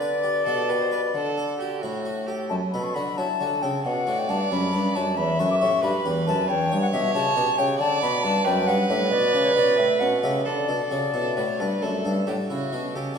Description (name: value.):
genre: classical, baroque-style sonata movement with continuo.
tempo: 89 BPM (dotted quarters).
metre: 12/8.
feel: straight.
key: D major.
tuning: A4 = 438 Hz.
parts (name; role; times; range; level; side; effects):
bright baroque flute; melody; 0.0-12.4 s; C#5 to D6; -26 LUFS; left 4 dB; none.
warm violin; second line; 0.0-13.2 s; F#4 to E5; -26 LUFS; right 2 dB; none.
harpsichord; accompaniment; 0.0-13.2 s; E2 to C#5; -28 LUFS; equal; none.
mellow bassoon; bass; 0.0-13.2 s; E2 to F#3; -28 LUFS; right 1 dB; none.
room: wet recital hall reverb, RT60 1.7 s.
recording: none.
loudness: -21 LUFS.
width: side -6 dB against mid.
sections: 0.0-13.2 A section.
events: none.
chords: 0.0 G/D; 1.1 D; 2.5 F#m; 3.8 Bm; 5.2 Em; 6.5 C#dim/E; 7.8 D; 9.1 Bm; 9.8 A7; 10.5 D.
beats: 0.46 1.14 1.82 | 2.50 3.17 3.85 4.51 | 5.17 5.83 6.49 7.14 | 7.80 8.46 9.12 9.78 | 10.46 11.14 11.82 12.50 | 13.18.